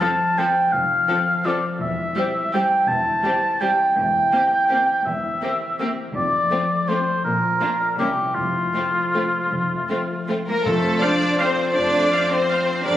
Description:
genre	classical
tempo	148-179 BPM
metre	3/4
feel	rubato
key	F major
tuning	A4 = 440 Hz
part	rich symphonic violin section	melody	0.0-13.0 s	E4 to D5	-31 LUFS	left 2 dB	none
part	rich symphonic violin section	second line	0.0-13.0 s	C4 to D5	-28 LUFS	left 1 dB	none
part	warm oboe	second line	0.0-13.0 s	F4 to A5	-20 LUFS	equal	none
part	bright symphonic viola section	accompaniment	0.0-12.6 s	F3 to F5	-29 LUFS	equal	none
part	concert harp	arpeggios	0.0-13.0 s	Bb2 to D5	-30 LUFS	left 4 dB	none
part	clear symphonic cello section	bass	0.7-13.0 s	E2 to D4	-28 LUFS	right 1 dB	none
part	rich symphonic double bass section	bass	0.7-13.0 s	E1 to F2	-31 LUFS	right 2 dB	none
part	silver concert flute	second line	10.5-13.0 s	A4 to D5	-28 LUFS	left 1 dB	none
part	mellow French horn section	sustained chords	10.5-13.0 s	A3 to D4	-29 LUFS	equal	none
part	mellow trumpet section	stabs	10.5-13.0 s	A4 to D5	-28 LUFS	right 1 dB	none
part	mellow clarinet	second line	10.7-13.0 s	A4 to F5	-34 LUFS	left 2 dB	none
part	warm bassoon	accompaniment	10.7-13.0 s	F3 to G3	-30 LUFS	equal	none
part	mellow tuba	bass	10.7-13.0 s	F1	-34 LUFS	right 2 dB	none
part	timpani	percussion	10.7-11.2 s	F2	-34 LUFS	right 1 dB	none
room	wet concert hall reverb, RT60 2.0 s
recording	recorded on a phone in the room, studio ambience, compression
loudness	-18 LUFS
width	side -12 dB against mid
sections	0.0-10.7 A section; 10.7-13.0 A section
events	none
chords	0.0 F; 1.8 C/E; 4.0 C7/E; 6.2 F; 7.2 Bb; 8.0 C7b9; 8.4 F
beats	0.01 0.38 | 0.73 1.09 1.46 | 1.81 2.16 2.54 | 2.89 3.24 3.62 | 3.97 4.33 4.70 | 5.06 5.42 5.80 | 6.15 6.51 6.89 | 7.24 7.60 7.99 | 8.36 8.74 9.14 | 9.51 9.89 10.29 | 10.65 11.02 11.40 | 11.75 12.12 12.49 | 12.85

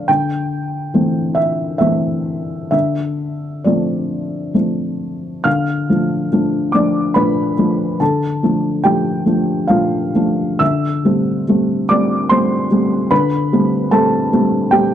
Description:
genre	neoclassical minimalist piano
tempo	63-74 BPM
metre	3/4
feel	rubato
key	D dorian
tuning	A4 = 440 Hz
part	felt-muted upright piano	solo	0.0-14.9 s	D3 to F6	-14 LUFS	equal	none
room	small room ambience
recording	dry, close 1970s-style studio recording, lossy compression artefacts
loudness	-14 LUFS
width	side -10 dB against mid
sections	0.0-5.5 A section; 5.5-14.9 A section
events	none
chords	0.1 Am7/D; 2.7 Dm7; 5.5 Dm; 10.6 Am7/D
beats	| 0.07 0.93 1.80 | 2.73 3.66 4.55 | 5.46 6.32 7.16 | 8.00 8.84 9.68 | 10.60 11.46 12.29 | 13.10 13.92 14.74

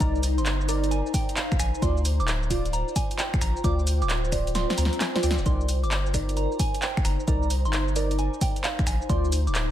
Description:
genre	UK garage, two-step garage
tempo	132 BPM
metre	4/4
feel	swing 66% on 16ths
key	C minor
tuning	A4 = 440 Hz
part	soft synth bell	melody	0.0-9.7 s	F5 to D6	-34 LUFS	right 3 dB	chorus, phaser, digital delay
part	deep mellow chord stab	stabs	0.0-9.3 s	Eb4 to D5	-32 LUFS	right 1 dB	chorus, phaser, vintage 12-bit sampler grit, digital delay
part	soft dub sub bass	bass	0.0-9.7 s	D1 to D2	-25 LUFS	equal	none
part	electronic kick drum	drums	0.0-9.2 s	none	-27 LUFS	equal	none
part	punchy analog drum machine	drums	0.0-9.7 s	finger snaps, handclaps, hi-hat, shaker, snare drum	-30 LUFS	equal	none
part	ethereal airy pad	texture	0.0-9.7 s	Eb4 to Bb5	-34 LUFS	left 1 dB	ensemble chorus, built-in reverb, sidechain pumping
part	swell	sound effects	4.7-5.5 s	none	-36 LUFS	left 1 dB	none
room	little or no reverb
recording	none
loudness	-22 LUFS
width	side -12 dB against mid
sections	0.0-9.7 A section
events	kick drops out 4.5-5.5; drum fill 4.5-5.5; swell 4.7-5.5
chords	0.0 Cm7; 1.8 G7sus4/D; 5.5 Cm7; 9.1 G7sus4/D (rootless)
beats	| 0.00 0.46 0.91 1.37 | 1.82 2.28 2.73 3.19 | 3.64 4.09 4.55 5.00 | 5.46 5.91 6.37 6.82 | 7.28 7.73 8.19 8.64 | 9.10 9.55

